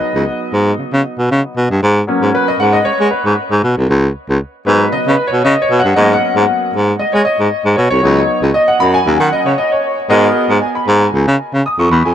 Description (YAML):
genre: early-eighties boogie funk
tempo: 116 BPM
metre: 4/4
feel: straight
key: G# minor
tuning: A4 = 440 Hz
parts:
  - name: clear grand piano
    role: accompaniment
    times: 0.0-12.1 s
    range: F#3 to D#6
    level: -14 LUFS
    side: equal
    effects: lush chorus
  - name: breathy baritone saxophone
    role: bass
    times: 0.1-12.1 s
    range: B#1 to G#3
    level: -12 LUFS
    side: equal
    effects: none
room: wet lush hall reverb, RT60 3.0 s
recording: dreamy mix soaked in reverb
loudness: -11 LUFS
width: side -10 dB against mid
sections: 0.0-10.1 A section; 10.1-12.1 B section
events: grand piano solo 0.0-10.1; stop 9.6-10.1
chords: 0.0 C#9sus4; 1.8 G#m11; 3.9 C#9sus4; 6.0 G#m11; 8.0 C#9sus4; 9.1 D#m7; 10.1 G#m9; 11.1 C#